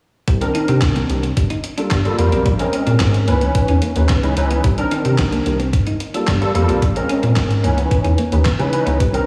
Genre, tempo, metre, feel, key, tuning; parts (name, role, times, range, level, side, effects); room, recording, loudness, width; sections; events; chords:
early-eighties boogie funk; 110 BPM; 4/4; straight; A4 = 439 Hz
rubbery square bass; bass; 0.3-9.2 s; G1 to Db3; -20 LUFS; equal
detuned 8-bit digital drum machine; drums; 0.3-9.3 s; handclaps, hi-hat, kick drum, snare drum; -23 LUFS; equal
barky tine electric piano; accompaniment; 0.4-9.3 s; Eb3 to Cb5; -22 LUFS; equal; overdrive, ensemble chorus
clean electric guitar; riff; 0.4-9.2 s; Ab3 to Eb4; -28 LUFS; equal; ensemble chorus
moderate lush hall reverb, RT60 2.3 s; dreamy mix soaked in reverb, small room ambience; -17 LUFS; mono
0.3-9.3 A section
0.3 Cm9; 1.4 Gm9; 2.5 Bbm9; 3.3 Dbm9; 4.6 Cm9; 5.7 Gm9; 6.8 Bbm9; 7.6 Dbm9